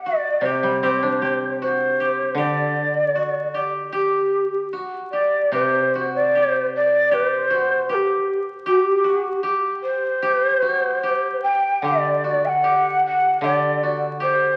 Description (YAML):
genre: japanese traditional, Japanese chamber music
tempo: 76 BPM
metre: 2/4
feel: rubato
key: unclear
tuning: A4 = 440 Hz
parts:
  - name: mellow hollow shakuhachi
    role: melody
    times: 0.0-14.6 s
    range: G4 to G5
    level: -22 LUFS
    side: equal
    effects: none
  - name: koto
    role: second line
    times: 0.0-14.6 s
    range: F#4 to G4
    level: -28 LUFS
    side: equal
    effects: none
  - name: koto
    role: accompaniment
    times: 0.4-7.9, 11.8-14.6 s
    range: C3 to G4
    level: -30 LUFS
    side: equal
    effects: none
room: wet recital hall reverb, RT60 1.8 s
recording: very old 78 rpm record, vinyl crackle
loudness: -20 LUFS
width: mono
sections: 0.0-5.5 A section; 5.5-14.6 B section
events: none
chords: none